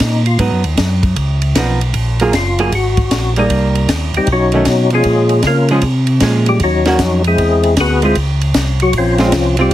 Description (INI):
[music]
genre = soul jazz organ trio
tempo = 154 BPM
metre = 4/4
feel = swing 65% on 8ths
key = Db major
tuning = A4 = 439 Hz
[part]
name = percussive tonewheel organ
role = melody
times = 0.0-9.7 s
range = F3 to B4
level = -14 LUFS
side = left 2 dB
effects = slow rotary speaker, chorus vibrato
[part]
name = mellow tonewheel organ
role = bass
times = 0.0-9.7 s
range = Gb1 to Db3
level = -15 LUFS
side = equal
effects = none
[part]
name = compact cocktail drum kit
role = drums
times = 0.0-9.7 s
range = hi-hat, kick drum, ride cymbal, snare drum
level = -19 LUFS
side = equal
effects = none
[part]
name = archtop guitar, miked and amplified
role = accompaniment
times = 0.4-9.7 s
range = Eb3 to Ab4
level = -16 LUFS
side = right 3 dB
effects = none
[sound]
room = light reverb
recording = heavily compressed radio sound, multiband compression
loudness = -11 LUFS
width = side -13 dB against mid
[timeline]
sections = 0.0-9.7 A section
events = tonewheel organ solo 0.0-9.7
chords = 0.4 Abm7; 1.2 Db9; 1.9 Gbmaj9; 3.5 Cm7; 4.3 Cb9; 5.0 Bbm7; 6.6 Ebm7; 7.4 Ab7alt; 8.2 Dbmaj7